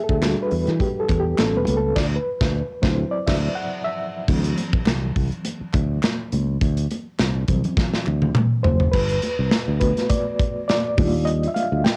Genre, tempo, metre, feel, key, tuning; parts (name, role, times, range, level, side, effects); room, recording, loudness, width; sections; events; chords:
lush 1970s-style soul; 103 BPM; 4/4; swing 54% on 16ths; A4 = 440 Hz
reed electric piano; accompaniment; 0.0-12.0 s; E3 to G5; -27 LUFS; equal; fast tremolo, cassette tape
fingered electric bass; bass; 0.1-11.9 s; E1 to E3; -25 LUFS; equal
modern studio drum kit; drums; 0.1-12.0 s; crash cymbal, hi-hat, kick drum, snare drum, toms; -25 LUFS; equal; cassette tape
congas; percussion; 0.2-12.0 s; -31 LUFS; equal
group handclap; percussion; 0.2-8.5 s; -37 LUFS; equal
light reverb; home recording on cassette; -22 LUFS; mono
0.0-4.3 A section; 4.3-8.9 B section; 8.9-12.0 C section
reed electric piano solo 0.0-4.3, 8.9-12.0; band accent 2.0-4.3; drum fill 7.8-8.9
0.0 Em7; 1.4 A7; 2.0 D9; 8.9 Gmaj9 (rootless); 11.0 Ebmaj7